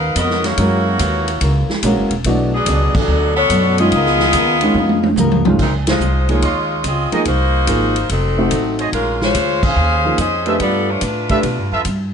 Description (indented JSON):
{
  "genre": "jazz, big band swing",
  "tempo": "144 BPM",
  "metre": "4/4",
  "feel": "swing 67% on 8ths",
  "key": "unclear",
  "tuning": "A4 = 440 Hz",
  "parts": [
    { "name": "bright saxophone section", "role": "melody", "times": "0.0-11.9 s", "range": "F#3 to E#5", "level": "-17 LUFS", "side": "left 1 dB", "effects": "none" },
    { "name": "picked swing-style acoustic guitar", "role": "accompaniment", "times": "0.0-5.5 s", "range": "F#2 to A#4", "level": "-25 LUFS", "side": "left 4 dB", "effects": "none" },
    { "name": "upright bass", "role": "bass", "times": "0.0-12.1 s", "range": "E1 to B2", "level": "-19 LUFS", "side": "equal", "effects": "none" },
    { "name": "swinging big-band drum kit", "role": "drums", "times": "0.2-12.0 s", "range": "crash cymbal, hi-hat, kick drum, ride cymbal, snare drum, toms", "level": "-21 LUFS", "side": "equal", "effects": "none" },
    { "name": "clear grand piano", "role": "accompaniment", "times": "0.6-11.4 s", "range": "D#3 to C#5", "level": "-20 LUFS", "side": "right 1 dB", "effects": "none" },
    { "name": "warm trumpet section", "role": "stabs", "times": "6.4-11.8 s", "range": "F4 to C6", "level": "-22 LUFS", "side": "right 4 dB", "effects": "none" }
  ],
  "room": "moderate club reverb, RT60 0.8 s",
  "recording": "nothing above 10.3 kHz",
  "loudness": "-13 LUFS",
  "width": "side -7 dB against mid",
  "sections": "0.0-5.6 A section; 5.6-12.1 B section",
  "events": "band accent 2.9, 5.8, 9.6; drum fill 4.8-5.6",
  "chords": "0.0 G#m11; 0.6 F#7; 2.2 Bm7; 3.9 C#13; 5.6 Dbmaj9; 7.3 Cm7b5; 8.1 F7b9; 8.9 Bbm11; 10.6 G13",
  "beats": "0.16 | 0.57 0.99 1.41 1.83 | 2.25 2.67 3.08 3.50 | 3.92 4.34 4.75 5.17 | 5.59 6.01 6.42 6.84 | 7.26 7.68 8.10 8.51 | 8.93 9.35 9.77 10.19 | 10.60 11.02 11.44 11.86"
}